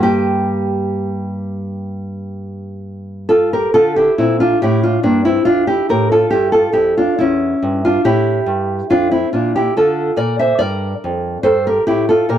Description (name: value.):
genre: classical, baroque-style dance for nylon-string guitar.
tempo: 63-72 BPM.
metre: 4/4.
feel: rubato.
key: G minor, D minor from 3.7 s.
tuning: A4 = 440 Hz.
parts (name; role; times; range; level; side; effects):
nylon-string guitar; solo; 0.0-12.4 s; E2 to E5; -13 LUFS; equal; none.
room: light reverb.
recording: dry, close 1970s-style studio recording.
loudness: -13 LUFS.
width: side -10 dB against mid.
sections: 0.0-3.7 A section; 3.7-12.4 A section.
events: none.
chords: 0.0 Gm; 3.7 Dm; 7.2 A7/E; 8.9 Dm/F.